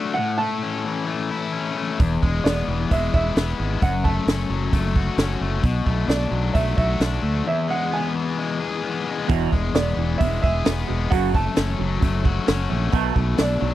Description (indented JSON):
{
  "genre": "indie rock",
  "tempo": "132 BPM",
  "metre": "4/4",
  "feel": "straight",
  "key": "unclear",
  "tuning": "A4 = 437 Hz",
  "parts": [
    { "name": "warm upright piano", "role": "melody", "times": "0.0-13.7 s", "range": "D5 to A5", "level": "-27 LUFS", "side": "right 3 dB", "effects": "slapback echo" },
    { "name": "distorted electric guitar", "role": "riff", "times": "0.0-13.7 s", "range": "E2 to G#4", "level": "-25 LUFS", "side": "left 5 dB", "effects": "overdrive" },
    { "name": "modern bright fingered electric bass", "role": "bass", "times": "2.0-13.7 s", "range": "E1 to D2", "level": "-24 LUFS", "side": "right 1 dB", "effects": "none" },
    { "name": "compact cocktail drum kit", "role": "drums", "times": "2.0-13.5 s", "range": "hi-hat, kick drum, snare drum", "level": "-20 LUFS", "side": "right 1 dB", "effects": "none" },
    { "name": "twangy electric guitar", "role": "riff", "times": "9.3-13.7 s", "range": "E2 to A3", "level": "-28 LUFS", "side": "right 13 dB", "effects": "lush chorus, slapback echo" }
  ],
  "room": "little or no reverb",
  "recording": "dry, close 1970s-style studio recording",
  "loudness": "-20 LUFS",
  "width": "side -14 dB against mid",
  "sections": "0.0-9.3 A section; 9.3-13.7 A section",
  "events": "break 7.5-9.3",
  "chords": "0.2 A; 2.0 E; 3.8 F#m; 5.6 Bm7; 7.5 E; 11.1 F#m; 12.9 Bm7"
}